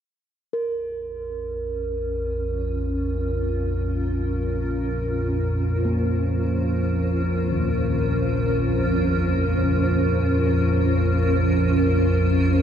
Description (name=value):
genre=dark ambient drone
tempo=52 BPM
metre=4/4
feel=straight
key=Bb minor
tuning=A4 = 439 Hz
part: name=quartz singing bowl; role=texture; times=0.5-12.6 s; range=Bb4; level=-32 LUFS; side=right 3 dB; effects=stereo widening
part: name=granular cloud pad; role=sustained chords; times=1.7-12.6 s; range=Db4 to C5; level=-24 LUFS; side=equal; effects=built-in reverb
part: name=analog drone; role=drone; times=1.2-12.6 s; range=Bb1 to F2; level=-22 LUFS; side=equal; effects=chorus
part: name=gamelan-type bossed gongs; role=arpeggios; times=5.9-12.6 s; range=Eb2 to Db4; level=-31 LUFS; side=left 1 dB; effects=none
room=wet huge ambient reverb, RT60 7.4 s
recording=none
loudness=-20 LUFS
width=side -8 dB against mid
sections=0.6-12.6 A section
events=fade-out on singing bowl 0.6-12.6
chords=0.6 Bbm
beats=| 0.57 1.75 2.92 4.09 | 5.25 6.40 7.55 8.71 | 9.86 11.01 12.17